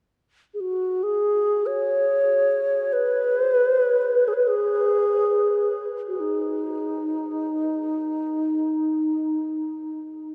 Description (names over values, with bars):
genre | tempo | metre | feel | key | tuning
world meditative, free-time meditation music | free time | none | none | unclear | A4 = 439 Hz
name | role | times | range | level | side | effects
low xiao | solo | 0.5-9.9 s | D#4 to C#5 | -23 LUFS | equal | delay
room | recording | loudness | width
wet huge ambient reverb, RT60 7.6 s | dreamy mix soaked in reverb, cassette tape | -23 LUFS | mono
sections
0.0-10.3 A section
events
none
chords
none